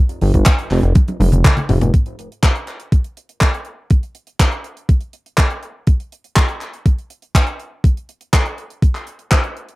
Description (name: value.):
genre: italo disco.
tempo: 122 BPM.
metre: 4/4.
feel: straight.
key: unclear.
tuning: A4 = 440 Hz.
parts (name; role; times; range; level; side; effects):
tight funk drum kit; drums; 0.1-9.8 s; handclaps, hi-hat, toms; -20 LUFS; equal; none.
chorused synth bass; bass; 0.2-1.9 s; F1 to G1; -16 LUFS; equal; none.
electronic kick drum; drums; 0.3-9.4 s; none; -12 LUFS; equal; overdrive.
room: little or no reverb.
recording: dry, close 1970s-style studio recording.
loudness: -15 LUFS.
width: side -21 dB against mid.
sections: 0.0-1.9 A section; 1.9-9.8 B section.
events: drum fill 1.0-1.9.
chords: none.